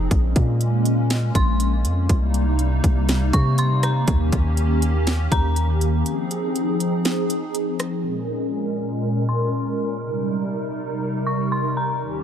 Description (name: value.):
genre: hip hop, atmospheric cloud-rap.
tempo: 121 BPM.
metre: 4/4.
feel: half-time.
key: Bb dorian.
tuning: A4 = 441 Hz.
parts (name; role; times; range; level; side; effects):
hollow soft pad; sustained chords; 0.0-12.2 s; Eb2 to Bb4; -23 LUFS; equal; ensemble chorus, sidechain pumping, low-pass filter.
long sustained 808-style bass; bass; 0.0-6.0 s; Bb1 to C3; -20 LUFS; equal; none.
trap drum kit; drums; 0.1-7.9 s; hi-hat, kick drum, rim click, snare drum; -21 LUFS; equal; none.
dark detuned synth bell; melody; 1.4-6.0, 9.3-12.0 s; Bb5 to Db6; -29 LUFS; left 1 dB; chorus, low-pass filter, ping-pong delay.
room: little or no reverb.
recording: none.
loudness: -19 LUFS.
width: side -9 dB against mid.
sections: 0.0-8.0 A section; 8.0-12.2 B section.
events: break 6.1-8.0; filter sweep 8.0-12.2.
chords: 0.1 Bbm7; 2.1 Cm7; 4.1 Eb7; 6.1 Fm7; 8.0 Bbm7; 10.0 Cm7.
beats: | 0.11 0.61 1.10 1.60 | 2.09 2.59 3.09 3.58 | 4.08 4.57 5.07 5.57 | 6.06 6.56 7.05 7.55 | 8.04 8.54 9.04 9.53 | 10.03 10.52 11.02 11.52 | 12.01.